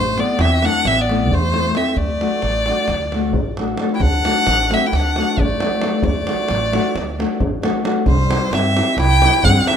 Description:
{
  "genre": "balkan folk, Balkan wedding band",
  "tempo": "266 BPM (eighths)",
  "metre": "9/8",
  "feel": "straight",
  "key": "D mixolydian",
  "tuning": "A4 = 440 Hz",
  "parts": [
    { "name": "rich violin", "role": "melody", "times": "0.0-9.8 s", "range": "C5 to G5", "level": "-19 LUFS", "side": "equal", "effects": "none" },
    { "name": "mellow clarinet", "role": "second line", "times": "0.0-9.8 s", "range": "G3 to E4", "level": "-24 LUFS", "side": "left 4 dB", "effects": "none" },
    { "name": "upright bass", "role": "bass", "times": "0.0-9.6 s", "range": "A1 to G2", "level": "-20 LUFS", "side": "right 1 dB", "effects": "none" },
    { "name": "nylon-string guitar", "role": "accompaniment", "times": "0.2-9.8 s", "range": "G3 to A4", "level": "-22 LUFS", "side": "left 3 dB", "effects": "none" },
    { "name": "davul", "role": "percussion", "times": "0.2-9.8 s", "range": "none", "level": "-23 LUFS", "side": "right 1 dB", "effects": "none" }
  ],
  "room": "moderate spring reverb, RT60 1.2 s",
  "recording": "minimal, uncompressed stereo recording",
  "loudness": "-15 LUFS",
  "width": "side -8 dB against mid",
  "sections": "0.0-4.0 A section; 4.0-9.8 B section",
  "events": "none",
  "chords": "0.0 Am; 2.0 D; 8.1 C"
}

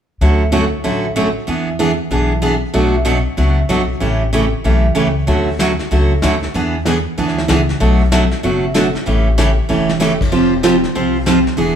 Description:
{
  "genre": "country, western swing",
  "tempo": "190 BPM",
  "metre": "4/4",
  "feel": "swing 63% on 8ths",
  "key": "D major",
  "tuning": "A4 = 440 Hz",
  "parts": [
    { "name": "picked steel-string acoustic guitar", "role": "accompaniment", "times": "0.2-11.8 s", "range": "B2 to C5", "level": "-15 LUFS", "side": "right 2 dB", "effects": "none" },
    { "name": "upright bass", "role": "bass", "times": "0.2-11.8 s", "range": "E1 to E2", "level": "-17 LUFS", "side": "left 1 dB", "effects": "none" },
    { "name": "vintage brush drum kit", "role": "drums", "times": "5.3-11.8 s", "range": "brushed snare drum, crash cymbal, hi-hat, kick drum, snare drum", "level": "-22 LUFS", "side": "left 1 dB", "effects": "none" }
  ],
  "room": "moderate large studio reverb, RT60 1.2 s",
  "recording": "band playing live in one room",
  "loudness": "-13 LUFS",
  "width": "side -8 dB against mid",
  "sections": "0.2-5.3 A section; 5.3-11.8 B section",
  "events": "drum fill 9.7-10.0",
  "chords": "0.2 Dmaj7; 1.5 E7; 2.7 Bm7; 4.0 A7; 5.3 Dmaj7; 6.5 E7; 7.8 Bm7; 9.1 A7; 10.3 Fsus2"
}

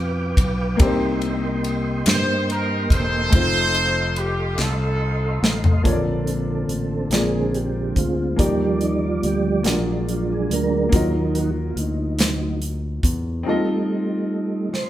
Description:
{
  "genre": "slow gospel",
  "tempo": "47 BPM (dotted quarters)",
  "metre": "6/8",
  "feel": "straight",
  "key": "Bb major",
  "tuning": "A4 = 442 Hz",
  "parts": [
    { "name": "clear upright piano", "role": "accompaniment", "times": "0.0-14.9 s", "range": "Bb2 to Eb5", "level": "-26 LUFS", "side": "left 2 dB", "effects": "none" },
    { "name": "mellow tonewheel organ", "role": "sustained chords", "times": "0.0-14.9 s", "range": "D3 to D6", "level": "-24 LUFS", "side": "right 2 dB", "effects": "fast rotary speaker, chorus vibrato" },
    { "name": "fingered electric bass", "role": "bass", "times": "0.0-13.4 s", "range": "E1 to G2", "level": "-25 LUFS", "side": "equal", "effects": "none" },
    { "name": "modern studio drum kit", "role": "drums", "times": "0.4-14.9 s", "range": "hi-hat, kick drum, ride cymbal, snare drum, toms", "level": "-20 LUFS", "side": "equal", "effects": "none" },
    { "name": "clear horn section", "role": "melody", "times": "2.1-5.8 s", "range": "C4 to C5", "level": "-22 LUFS", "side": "equal", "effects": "none" },
    { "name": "group handclap", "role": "percussion", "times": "2.1-5.0, 12.2-12.6 s", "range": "none", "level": "-30 LUFS", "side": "left 2 dB", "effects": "none" }
  ],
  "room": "wet large studio reverb, RT60 1.2 s",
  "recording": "band playing live in one room",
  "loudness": "-18 LUFS",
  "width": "side -13 dB against mid",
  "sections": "0.0-5.9 A section; 5.9-14.9 B section",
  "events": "drum fill 4.6-5.9, 14.7; tonewheel organ solo 5.9-14.9",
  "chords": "0.0 G7; 0.8 Cm7; 3.3 F7; 5.9 Bbmaj7; 7.1 Bb7; 8.4 Ebmaj7; 9.7 Bb7b13; 10.9 Ebmadd9; 13.5 F7"
}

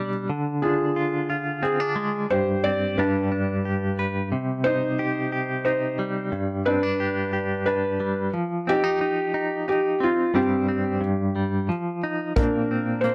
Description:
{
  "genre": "acoustic folk-pop ballad",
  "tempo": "90 BPM",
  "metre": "3/4",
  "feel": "straight",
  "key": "unclear",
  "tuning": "A4 = 437 Hz",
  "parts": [
    { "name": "felt-muted upright piano", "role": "melody", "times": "0.0-13.1 s", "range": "C4 to D5", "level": "-26 LUFS", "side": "equal", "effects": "none" },
    { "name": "direct-recorded clean electric guitar", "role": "accompaniment", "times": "0.0-13.1 s", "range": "G2 to B4", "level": "-27 LUFS", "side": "equal", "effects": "tremolo" },
    { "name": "soft brush drum kit", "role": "drums", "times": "12.4-13.1 s", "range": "hi-hat, kick drum", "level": "-25 LUFS", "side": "equal", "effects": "none" }
  ],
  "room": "little or no reverb",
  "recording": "dry, close 1970s-style studio recording",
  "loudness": "-24 LUFS",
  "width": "mono",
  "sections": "0.0-12.4 A section",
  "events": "none",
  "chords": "0.3 Ddim; 2.3 Gsus4; 3.0 G; 4.3 Cm; 6.3 G; 8.3 F5; 10.3 Gsus4; 11.0 N.C.; 11.7 Ebsus2/F; 12.4 Bbadd9"
}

